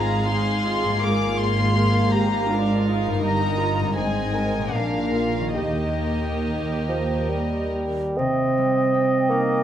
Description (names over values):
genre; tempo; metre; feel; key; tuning
classical, slow romantic movement for symphony orchestra; 64-84 BPM; 3/4; rubato; Eb major; A4 = 439 Hz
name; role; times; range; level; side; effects
warm chamber violin section; melody; 0.0-7.7 s; Eb5 to D6; -28 LUFS; left 2 dB; none
rich studio violin section; second line; 0.0-8.0 s; F4 to F5; -30 LUFS; equal; none
warm studio viola section; accompaniment; 0.0-8.0 s; Ab3 to Ab4; -27 LUFS; equal; none
concert harp; arpeggios; 0.0-9.6 s; G2 to Bb4; -30 LUFS; left 6 dB; none
dark studio double bass section; bass; 0.0-8.0 s; G1 to Eb2; -28 LUFS; right 2 dB; none
warm studio cello section; bass; 0.0-8.0 s; G2 to Eb3; -27 LUFS; right 1 dB; none
dark bassoon; accompaniment; 6.9-9.6 s; F3 to C4; -22 LUFS; right 3 dB; none
mellow hollow concert flute; second line; 8.2-9.6 s; G5; -31 LUFS; left 3 dB; none
warm clarinet; second line; 8.2-9.6 s; C4; -26 LUFS; right 2 dB; none
warm oboe; second line; 8.2-9.6 s; Eb5; -27 LUFS; equal; none
room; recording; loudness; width
wet recital hall reverb, RT60 1.4 s; none; -20 LUFS; side -10 dB against mid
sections
0.0-8.2 A section; 8.2-9.6 B section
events
none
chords
0.0 Fm/Ab; 1.0 Bb7/Ab; 3.2 Eb/G; 4.0 Ab; 4.8 Bb7; 5.6 Eb; 8.2 Cm